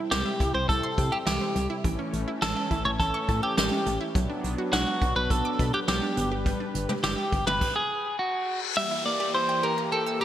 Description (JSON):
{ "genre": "synth-pop", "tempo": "104 BPM", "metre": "4/4", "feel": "straight", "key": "unclear", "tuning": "A4 = 441 Hz", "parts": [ { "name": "brassy analog pad", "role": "sustained chords", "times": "0.0-10.2 s", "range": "C3 to B4", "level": "-34 LUFS", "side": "left 1 dB", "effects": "chorus" }, { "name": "wide unison pluck", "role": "arpeggios", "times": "0.0-10.2 s", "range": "E3 to F#6", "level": "-34 LUFS", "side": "right 2 dB", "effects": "digital delay" }, { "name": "twelve-string electric guitar", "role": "melody", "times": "0.1-10.2 s", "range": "F#4 to E5", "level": "-27 LUFS", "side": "equal", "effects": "none" }, { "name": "solid FM bass", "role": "bass", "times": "0.1-7.6 s", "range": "G1 to C3", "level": "-31 LUFS", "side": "equal", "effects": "none" }, { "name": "vintage brush drum kit", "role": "drums", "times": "0.1-7.7 s", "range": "crash cymbal, hi-hat, kick drum, snare drum, toms", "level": "-29 LUFS", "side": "equal", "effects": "gated reverb" }, { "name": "reverse cymbal and downlifter", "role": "sound effects", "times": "8.2-10.2 s", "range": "none", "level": "-34 LUFS", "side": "left 5 dB", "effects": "none" } ], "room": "moderate lush hall reverb, RT60 2.6 s", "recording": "bright 1980s-style digital production", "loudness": "-24 LUFS", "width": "side -11 dB against mid", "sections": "0.0-8.8 A section; 8.8-10.2 B section", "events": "reverse cymbal 8.2-8.8", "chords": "0.0 C; 1.8 A; 4.2 Bm; 6.2 G; 7.6 N.C.; 8.8 Edim" }